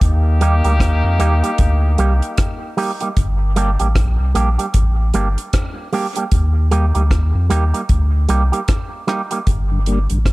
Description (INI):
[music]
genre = dub reggae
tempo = 76 BPM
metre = 4/4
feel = swing 60% on 16ths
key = unclear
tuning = A4 = 440 Hz
[part]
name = clear horn section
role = second line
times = 0.0-2.7 s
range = Bb3 to G4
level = -24 LUFS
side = left 2 dB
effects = dub echo
[part]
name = warm sub bass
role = bass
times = 0.0-10.3 s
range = G1 to F2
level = -15 LUFS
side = equal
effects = none
[part]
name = deep reggae drum kit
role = drums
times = 0.0-10.3 s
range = hi-hat, kick drum, rim click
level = -18 LUFS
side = equal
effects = none
[part]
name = electric guitar with an envelope filter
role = accompaniment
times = 0.4-9.4 s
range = G3 to G4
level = -22 LUFS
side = right 3 dB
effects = low-pass filter, dub echo
[part]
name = mellow tonewheel organ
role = accompaniment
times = 9.7-10.2 s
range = G2 to D4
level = -22 LUFS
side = left 2 dB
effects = slow rotary speaker, low-pass filter
[sound]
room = studio ambience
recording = none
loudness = -14 LUFS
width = side -20 dB against mid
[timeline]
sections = 0.0-9.5 A section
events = break 0.0-9.5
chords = 0.0 Eb; 3.2 Gm; 6.3 Eb; 9.5 Gm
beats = | 0.01 0.80 1.59 2.38 | 3.17 3.95 4.74 5.53 | 6.32 7.11 7.89 8.68 | 9.47 10.26